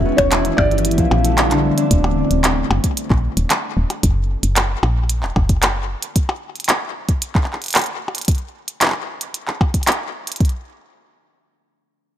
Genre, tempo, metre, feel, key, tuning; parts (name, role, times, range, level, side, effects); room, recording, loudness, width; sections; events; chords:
IDM; 113 BPM; 4/4; straight; A4 = 440 Hz
felt-muted upright piano; melody; 0.0-1.3 s; Db5 to E5; -23 LUFS; equal; tape echo
glassy FM pad; sustained chords; 0.0-1.9 s; D3 to Gb4; -23 LUFS; right 1 dB; ensemble chorus, built-in reverb
concert harp; arpeggios; 0.0-5.0 s; D3 to G4; -23 LUFS; left 2 dB; ping-pong delay
woody FM bass; bass; 0.0-6.0 s; Eb1 to Bb1; -19 LUFS; equal
electronic kick drum; drums; 0.0-10.5 s; -17 LUFS; equal
glitchy drum kit; drums; 0.2-10.5 s; handclaps, hi-hat, percussion blips; -20 LUFS; equal; ping-pong delay
digital ambience; -16 LUFS; side -11 dB against mid
0.0-1.9 A section; 1.9-10.4 B section; 10.4-12.2 C section
kick drops out 1.4-1.9
0.0 Em; 0.8 Bbmaj9; 1.9 N.C.